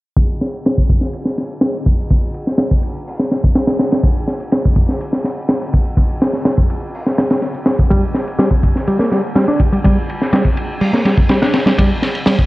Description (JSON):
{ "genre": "breakbeat, breaks", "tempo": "124 BPM", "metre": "4/4", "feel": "straight", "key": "G minor", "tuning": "A4 = 439 Hz", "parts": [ { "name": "crunchy breakbeat drum kit", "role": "drums", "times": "0.2-12.5 s", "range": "hi-hat, kick drum, ride cymbal, snare drum", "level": "-14 LUFS", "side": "equal", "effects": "low-pass filter on kick, low-pass filter on cymbals, low-pass filter on hats, low-pass filter on snare, low-pass filter on room" }, { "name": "picked electric bass", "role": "riff", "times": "7.9-12.3 s", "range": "G3 to D4", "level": "-17 LUFS", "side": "equal", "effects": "dub echo" } ], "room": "small room ambience", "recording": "low-pass filter", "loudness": "-13 LUFS", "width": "side -19 dB against mid", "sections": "0.2-12.5 A section", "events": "filter sweep on drum 0.2-12.5; filter sweep 0.2-12.5", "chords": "none" }